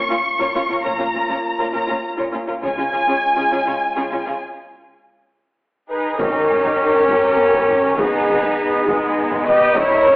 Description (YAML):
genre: cinematic, epic orchestral film score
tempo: 67 BPM (dotted quarters)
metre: 6/8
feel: straight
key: G# harmonic minor from 6.2 s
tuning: A4 = 436 Hz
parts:
  - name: dark symphonic violin section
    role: melody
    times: 0.0-10.2 s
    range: B3 to C#6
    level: -22 LUFS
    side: equal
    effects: none
  - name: warm French horn section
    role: sustained chords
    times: 0.0-10.2 s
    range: G#3 to D#5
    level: -21 LUFS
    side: left 1 dB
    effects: none
  - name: dark symphonic violin section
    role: second line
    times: 0.1-10.2 s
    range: G#3 to C#5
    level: -26 LUFS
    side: left 1 dB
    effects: none
  - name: dark symphonic viola section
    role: accompaniment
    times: 0.1-10.2 s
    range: C#4 to D#5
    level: -23 LUFS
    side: equal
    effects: none
  - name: rich symphonic cello section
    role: bass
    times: 0.1-10.2 s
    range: A#2 to E4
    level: -26 LUFS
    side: equal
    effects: none
  - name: warm symphonic double bass section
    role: bass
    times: 0.9-2.8, 6.2-10.1 s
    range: G#1 to E2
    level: -39 LUFS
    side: equal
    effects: none
  - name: taiko ensemble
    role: drums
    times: 2.6-10.2 s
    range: none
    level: -32 LUFS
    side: equal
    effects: none
  - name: clear trumpet section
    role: stabs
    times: 5.9-10.2 s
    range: G#3 to G4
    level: -20 LUFS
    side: equal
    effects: none
  - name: mellow tuba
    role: bass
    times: 6.2-10.1 s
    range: E1 to G#1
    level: -32 LUFS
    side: equal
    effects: none
  - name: impact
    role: sound effects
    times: 6.2-8.0 s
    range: none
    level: -37 LUFS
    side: equal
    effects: none
room: wet scoring stage reverb, RT60 1.5 s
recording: telephone sound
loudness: -16 LUFS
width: side -22 dB against mid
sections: 0.0-6.2 A section; 6.2-10.2 A section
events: break 4.4-6.2; impact 6.2-8.0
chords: 0.0 A#m; 2.6 C#; 4.4 N.C.; 6.2 G#m